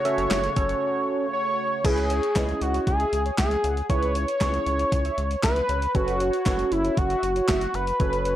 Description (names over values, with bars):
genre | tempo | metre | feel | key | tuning
synth-pop | 117 BPM | 4/4 | straight | C# minor | A4 = 441 Hz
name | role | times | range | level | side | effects
wide unison lead | melody | 0.0-8.4 s | E4 to C#5 | -24 LUFS | equal | analog delay
phased analog pad | sustained chords | 0.0-1.8 s | C#3 to F#4 | -34 LUFS | right 4 dB | phaser, chorus
barky tine electric piano | accompaniment | 0.1-8.3 s | C#4 to E5 | -30 LUFS | right 1 dB | overdrive, phaser
gated 80s digital drum machine | drums | 0.1-8.4 s | crash cymbal, handclaps, hi-hat, kick drum, snare drum | -26 LUFS | equal | gated reverb, gated reverb snare
rubbery square bass | bass | 0.2-8.4 s | F#1 to C#2 | -28 LUFS | equal | none
mellow synth brass | second line | 1.8-8.4 s | B4 to F#5 | -34 LUFS | equal | chorus, analog delay
room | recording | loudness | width
little or no reverb | dry, gritty hardware recording | -22 LUFS | side -12 dB against mid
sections
0.0-1.8 A section; 1.8-8.4 B section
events
break 0.8-1.8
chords
0.0 F#m; 1.8 C#m; 5.9 F#m